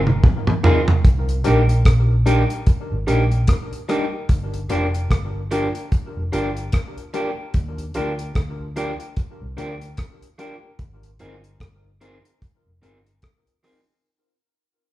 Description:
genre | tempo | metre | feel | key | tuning
lovers rock reggae | 74 BPM | 4/4 | swing 59% on 16ths | unclear | A4 = 438 Hz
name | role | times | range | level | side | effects
vintage muted fingered electric bass | bass | 0.0-13.2 s | F1 to Eb2 | -22 LUFS | equal | none
deep reggae drum kit | drums | 0.1-13.9 s | hi-hat, kick drum, rim click, toms | -17 LUFS | equal | none
tine electric piano | accompaniment | 0.6-13.8 s | C4 to Bb4 | -26 LUFS | left 2 dB | overdrive, fast stereo tremolo, dub echo
electric guitar through a small old amp | stabs | 0.6-13.8 s | F3 to Ab4 | -27 LUFS | right 3 dB | none
room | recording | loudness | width
moderate large studio reverb, RT60 1.1 s | band playing live in one room | -18 LUFS | side -15 dB against mid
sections
0.0-1.0 A section; 1.0-14.0 B section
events
drum fill 0.0-1.0; fade-out 1.0-14.0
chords
0.0 Ab6; 1.0 Cm7 (rootless); 4.3 Gm7; 7.5 Ebmaj9 (rootless); 10.8 Ab6

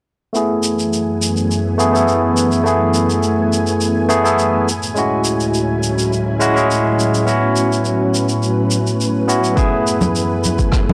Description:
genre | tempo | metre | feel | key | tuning
sunset chillout | 104 BPM | 4/4 | straight | F# minor | A4 = 443 Hz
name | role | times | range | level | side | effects
barky tine electric piano | accompaniment | 0.3-10.9 s | G#3 to A4 | -19 LUFS | equal | low-pass filter, analog delay
soft string machine | sustained chords | 0.5-10.9 s | D2 to G#5 | -21 LUFS | equal | ensemble chorus
shaker and rim click | drums | 0.3-10.9 s | none | -26 LUFS | equal | none
electronic kick drum | drums | 9.6-10.8 s | none | -18 LUFS | equal | overdrive
congas | percussion | 10.0-10.9 s | none | -22 LUFS | equal | none
room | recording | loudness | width
light reverb, small room ambience | dry, gritty hardware recording, transformer saturation, cassette tape | -16 LUFS | mono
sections
0.3-10.9 A section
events
none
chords
0.3 F#m11; 4.7 Dmaj9#11; 7.3 A69; 9.6 F#m11

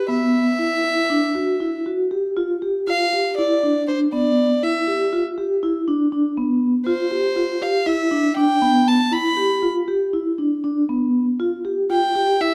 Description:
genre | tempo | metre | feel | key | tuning
contemporary instrumental, chamber music in an uneven meter | 239 BPM (eighths) | 9/8 | straight | unclear | A4 = 440 Hz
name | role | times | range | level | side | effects
rich violin | melody | 0.0-12.5 s | C5 to B5 | -24 LUFS | equal | none
vibraphone with soft mallets | arpeggios | 0.1-12.5 s | B3 to G4 | -21 LUFS | equal | none
room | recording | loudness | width
wet recital hall reverb, RT60 1.5 s | dark, warm production | -20 LUFS | mono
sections
0.0-2.4 A section; 2.4-12.5 B section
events
none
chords
0.1 Em7; 2.4 Fsus2; 3.4 E5; 4.6 G6/E; 6.9 Fsus2; 7.9 Em7; 9.1 G6/E; 11.4 Fsus2

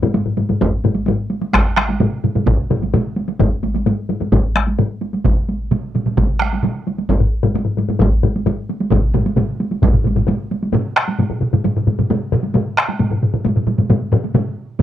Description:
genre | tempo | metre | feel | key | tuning
japanese traditional, taiko drum ensemble | 131 BPM | 4/4 | straight | none | none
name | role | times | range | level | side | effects
taiko ensemble | percussion | 0.0-14.8 s | none | -20 LUFS | right 2 dB | none
taiko ensemble | percussion | 0.0-14.8 s | none | -18 LUFS | left 3 dB | none
taiko ensemble | percussion | 0.6-9.9 s | none | -18 LUFS | equal | none
taiko ensemble | percussion | 1.5-14.8 s | none | -20 LUFS | right 3 dB | none
room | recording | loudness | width
light reverb | dry, close 1970s-style studio recording | -15 LUFS | side -12 dB against mid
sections
0.0-10.7 A section; 10.7-14.8 B section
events
speeding up 0.0-14.8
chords
none

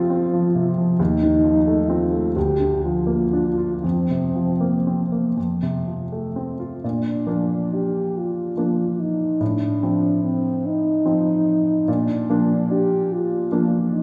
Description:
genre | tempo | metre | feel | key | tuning
classical, romantic duo for French horn and grand piano | 38-50 BPM (dotted quarters) | 6/8 | rubato | Bb major | A4 = 438 Hz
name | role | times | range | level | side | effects
dark French horn | melody | 0.0-14.0 s | C4 to G4 | -24 LUFS | equal | none
warm baby grand piano | accompaniment | 0.0-14.0 s | D2 to F4 | -24 LUFS | equal | none
room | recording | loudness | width
wet recital hall reverb, RT60 1.3 s | heard from further back in the room | -21 LUFS | mono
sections
0.0-6.8 A section; 6.8-14.0 B section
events
none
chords
0.0 F; 1.0 F7/Eb; 2.4 Bb/D; 3.8 Fsus4; 5.4 F; 6.8 Bb; 9.4 F7/A; 11.9 Bb

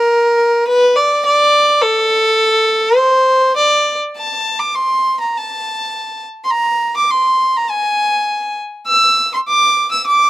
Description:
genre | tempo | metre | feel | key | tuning
alpine folk | 102 BPM | 2/4 | straight | unclear | A4 = 440 Hz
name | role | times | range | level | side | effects
warm fiddle | solo | 0.0-10.3 s | A4 to E6 | -12 LUFS | equal | slapback echo
room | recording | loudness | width
little or no reverb | recorded outdoors, with no room sound | -12 LUFS | side -16 dB against mid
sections
0.0-4.2 A section; 4.2-10.3 B section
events
none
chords
none

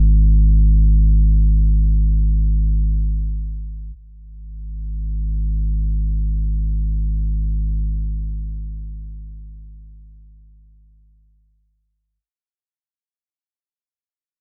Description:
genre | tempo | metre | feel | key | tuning
ambient | free time | none | none | unclear | A4 = 440 Hz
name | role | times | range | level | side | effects
warm sub bass | bass | 0.0-12.2 s | G#1 | -20 LUFS | equal | none
room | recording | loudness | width
little or no reverb | none | -19 LUFS | mono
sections
0.0-12.2 A section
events
fade-out 1.2-12.2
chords
none

